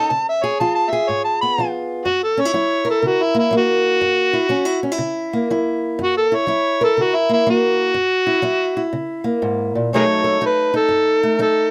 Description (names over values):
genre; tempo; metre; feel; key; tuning
acoustic country blues, solo or duo; 122 BPM; 4/4; swing 65% on 8ths; F# mixolydian; A4 = 441 Hz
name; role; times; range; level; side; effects
overdriven harmonica; melody; 0.0-11.7 s; E4 to B5; -19 LUFS; equal; none
fingerpicked old ladder-braced acoustic guitar; accompaniment; 0.0-11.7 s; F#2 to A#4; -23 LUFS; equal; none
room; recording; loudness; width
light reverb; close, detailed microphones; -18 LUFS; mono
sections
0.0-2.1 A section; 2.1-11.7 B section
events
harmonica solo 2.1-11.7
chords
0.1 C#7; 2.1 F#7; 9.9 B7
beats
| 0.09 0.59 1.08 1.57 | 2.06 2.56 3.05 3.54 | 4.03 4.52 5.01 5.50 | 5.99 6.48 6.97 7.46 | 7.96 8.45 8.94 9.43 | 9.92 10.41 10.90 11.40